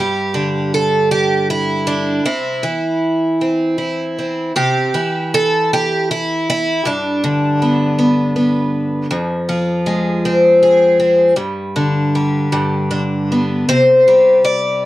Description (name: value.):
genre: folk, solo fingerstyle acoustic guitar.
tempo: 53 BPM (dotted quarters).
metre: 6/8.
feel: rubato.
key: C major.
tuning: A4 = 438 Hz.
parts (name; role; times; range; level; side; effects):
picked twelve-string acoustic guitar; solo; 0.0-14.9 s; F2 to D5; -13 LUFS; equal; none.
room: light reverb.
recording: worn, warbling old tape, cassette tape, warbly pitch drift.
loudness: -13 LUFS.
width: side -16 dB against mid.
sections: 0.0-4.6 A section; 4.6-14.9 A section.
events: none.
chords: 0.0 G5; 2.2 C; 6.8 G; 9.1 Fm; 11.4 G5; 12.5 G; 13.7 C5.